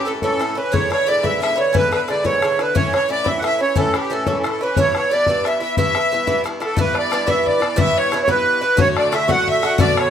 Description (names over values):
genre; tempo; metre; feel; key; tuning
celtic folk, Celtic jig; 119 BPM (dotted quarters); 6/8; straight; E dorian; A4 = 440 Hz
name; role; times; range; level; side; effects
accordion; melody; 0.0-10.1 s; G4 to F#5; -18 LUFS; right 2 dB; light tremolo tuning
clear fiddle; second line; 0.0-10.1 s; G4 to F#5; -25 LUFS; left 5 dB; none
Irish bouzouki; accompaniment; 0.0-10.1 s; G2 to F#4; -22 LUFS; right 1 dB; none
bodhran; percussion; 0.2-10.0 s; none; -22 LUFS; left 4 dB; none
room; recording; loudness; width
moderate small room reverb, RT60 0.5 s; none; -15 LUFS; side -8 dB against mid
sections
0.0-6.8 A section; 6.8-10.1 B section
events
none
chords
0.0 A; 0.7 E7; 2.7 A; 4.8 Em; 8.8 D